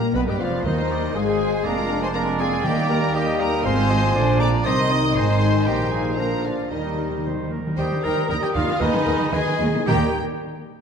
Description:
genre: quick classical-period movement for symphony orchestra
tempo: 107-122 BPM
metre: 2/4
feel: rubato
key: Eb major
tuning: A4 = 440 Hz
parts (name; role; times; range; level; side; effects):
- rich studio violin section; melody; 0.0-10.2 s; Eb5 to Eb6; -31 LUFS; left 2 dB; none
- mellow clarinet; second line; 0.0-10.1 s; Bb3 to C5; -31 LUFS; left 2 dB; none
- rich chamber viola section; accompaniment; 0.0-10.2 s; D3 to Bb4; -30 LUFS; left 1 dB; none
- dark French horn section; sustained chords; 0.0-10.1 s; Eb3 to Eb4; -28 LUFS; left 5 dB; none
- rich chamber violin section; second line; 0.1-10.2 s; Eb4 to G5; -32 LUFS; left 4 dB; none
- warm oboe; second line; 0.1-10.1 s; Ab4 to Bb5; -31 LUFS; right 1 dB; none
- warm bassoon; accompaniment; 0.1-10.1 s; Eb3 to B3; -30 LUFS; equal; none
- rich chamber cello section; bass; 0.1-10.2 s; Eb2 to Eb3; -28 LUFS; right 3 dB; none
- silver concert flute; second line; 0.2-10.2 s; Bb4 to Eb6; -31 LUFS; left 1 dB; none
- warm trumpet; stabs; 0.2-10.1 s; Eb4 to Eb5; -29 LUFS; right 2 dB; none
- clear chamber double bass section; bass; 0.2-10.2 s; F1 to Eb2; -26 LUFS; right 4 dB; none
- timpani; percussion; 0.7-3.4, 6.7-10.1 s; Eb3; -29 LUFS; equal; none
room: wet scoring stage reverb, RT60 1.9 s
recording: dark, warm production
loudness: -19 LUFS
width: side -6 dB against mid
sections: 0.0-7.8 A section; 7.8-9.9 B section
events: timpani fill 6.7-7.8, 8.8-9.9; slowing down 7.2-9.9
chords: 0.2 G7; 0.7 Cm/Eb; 1.2 Fm/Ab; 1.7 Bb7/F; 2.6 Eb; 3.6 Fm/Ab; 4.2 Bb; 4.7 Cm; 5.2 Ab; 5.7 Eb/Bb; 6.2 Bb; 6.7 Eb; 8.8 Abm/Eb; 9.9 Eb

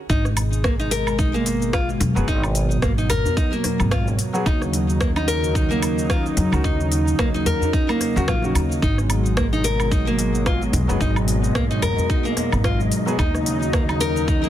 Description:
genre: organic downtempo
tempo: 110 BPM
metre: 4/4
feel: swing 57% on 16ths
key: unclear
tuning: A4 = 440 Hz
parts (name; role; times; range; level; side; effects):
- warm analog pad; sustained chords; 0.1-14.5 s; Cb3 to Eb4; -25 LUFS; right 1 dB; chorus, sidechain pumping
- nylon-string guitar; arpeggios; 0.1-14.5 s; Bb3 to Bb4; -25 LUFS; left 1 dB; digital delay
- upright bass; bass; 0.1-14.5 s; Gb1 to Gb2; -23 LUFS; equal; none
- afro-pop drum kit; drums; 0.1-14.5 s; cabasa, hi-hat, rim click, woodblock; -28 LUFS; equal; small room ambience
- electronic kick drum; drums; 0.1-14.4 s; none; -22 LUFS; equal; small room ambience
- djembe; percussion; 0.4-14.3 s; none; -30 LUFS; left 1 dB; none
- felt-muted upright piano; accompaniment; 2.2-13.2 s; Eb3 to Ab4; -29 LUFS; left 1 dB; sidechain pumping, digital delay
- wind-like tuned noise texture; texture; 9.5-14.5 s; Eb4 to Eb5; -33 LUFS; left 1 dB; built-in reverb
room: light reverb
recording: dense, heavily limited modern master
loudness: -18 LUFS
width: side -12 dB against mid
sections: 0.1-14.5 A section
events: none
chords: 0.1 Abm7; 4.5 Ebm7; 8.8 Abm7; 13.2 Ebm7

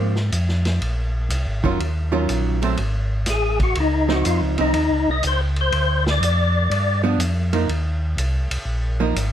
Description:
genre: soul jazz organ trio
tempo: 122 BPM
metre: 4/4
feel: swing 67% on 8ths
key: C minor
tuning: A4 = 440 Hz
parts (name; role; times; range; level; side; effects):
- archtop guitar, miked and amplified; accompaniment; 0.0-9.2 s; Eb3 to F4; -23 LUFS; right 4 dB; none
- mellow tonewheel organ; bass; 0.0-9.3 s; F1 to Ab2; -21 LUFS; equal; slow rotary speaker
- vintage drum kit; drums; 0.2-9.3 s; hi-hat, kick drum, ride cymbal, snare drum; -28 LUFS; equal; none
- percussive tonewheel organ; melody; 3.3-7.0 s; Eb4 to Eb5; -21 LUFS; left 3 dB; slow rotary speaker, overdrive, chorus vibrato
room: light reverb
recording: none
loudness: -18 LUFS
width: side -10 dB against mid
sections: 0.0-9.3 A section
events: none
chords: 0.0 Ab69; 1.8 Ebm9; 2.8 F#madd9/G#; 3.8 Dbmaj9; 5.7 Dm7; 6.7 G7; 7.7 Cm7

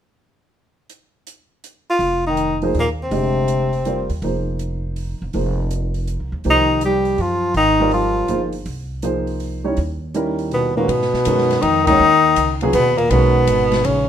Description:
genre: modal jazz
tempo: 162 BPM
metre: 3/4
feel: swing 66% on 8ths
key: F dorian, G# dorian from 10.9 s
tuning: A4 = 440 Hz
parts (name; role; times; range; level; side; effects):
- open jazz drum kit; drums; 0.9-14.0 s; crash cymbal, hi-hat, kick drum, ride cymbal, snare drum; -31 LUFS; right 1 dB; none
- warm tenor saxophone; melody; 1.9-4.1, 6.5-8.5, 10.5-14.1 s; Bb3 to G4; -17 LUFS; equal; none
- upright bass; bass; 2.0-14.1 s; E1 to G#2; -24 LUFS; right 1 dB; none
- breathy bass clarinet; second line; 2.3-4.1, 6.5-8.5, 10.5-14.1 s; Bb2 to G3; -22 LUFS; left 5 dB; none
- warm upright piano; accompaniment; 2.6-14.1 s; C#3 to Eb5; -23 LUFS; right 2 dB; none
room: moderate studio reverb, RT60 0.8 s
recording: minimal, uncompressed stereo recording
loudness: -16 LUFS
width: side -9 dB against mid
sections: 0.9-2.0 A section; 2.0-10.9 B section; 10.9-14.1 C section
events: band accent 11.8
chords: 0.9 N.C.; 2.0 Fm9; 9.8 Eb7b9; 10.9 G#m9

